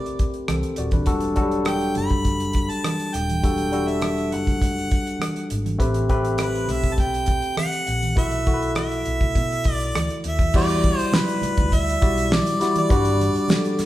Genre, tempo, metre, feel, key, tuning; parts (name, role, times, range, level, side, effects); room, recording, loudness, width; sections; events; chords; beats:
lush 1970s-style soul; 102 BPM; 4/4; straight; E minor; A4 = 440 Hz
bright harmonica; melody; 0.0-13.9 s; B4 to B5; -26 LUFS; right 1 dB
barky tine electric piano; accompaniment; 0.0-13.9 s; F#3 to D5; -24 LUFS; left 1 dB; overdrive
vintage muted fingered electric bass; bass; 0.0-13.8 s; D#1 to B2; -27 LUFS; equal
damped 70s drum kit; drums; 0.1-13.9 s; crash cymbal, hi-hat, kick drum, rim click, snare drum; -23 LUFS; equal
congas; percussion; 0.5-13.6 s; -32 LUFS; right 3 dB
tube shaker; percussion; 10.5-13.9 s; -46 LUFS; left 6 dB
vibraphone with soft mallets; texture; 11.1-13.9 s; A4 to D5; -33 LUFS; right 3 dB
wet large studio reverb, RT60 1.2 s; band playing live in one room; -19 LUFS; side -14 dB against mid
0.0-10.5 A section; 10.5-13.9 B section
0.0 Am9; 1.1 Em11; 5.8 Am9; 8.2 B7sus4; 10.5 Em9; 12.9 Gmaj7
0.49 | 1.08 1.67 2.26 2.85 | 3.44 4.03 4.62 5.21 | 5.81 6.40 6.99 7.58 | 8.17 8.76 9.35 9.94 | 10.54 11.13 11.72 12.31 | 12.90 13.49